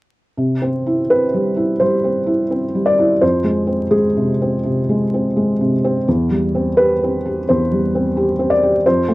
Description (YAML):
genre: neoclassical minimalist piano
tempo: 85 BPM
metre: 4/4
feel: rubato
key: C major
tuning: A4 = 440 Hz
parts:
  - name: felt-muted upright piano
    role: solo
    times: 0.4-9.1 s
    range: E2 to D5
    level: -14 LUFS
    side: equal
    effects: none
room: moderate studio ambience, RT60 0.5 s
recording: home recording on cassette, vinyl crackle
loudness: -14 LUFS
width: side -19 dB against mid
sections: 0.4-9.1 A section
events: none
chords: 0.4 C; 3.2 Fm; 6.1 C/E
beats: | 0.38 1.11 1.81 2.52 | 3.22 3.92 4.64 5.36 | 6.06 6.77 7.47 8.16 | 8.85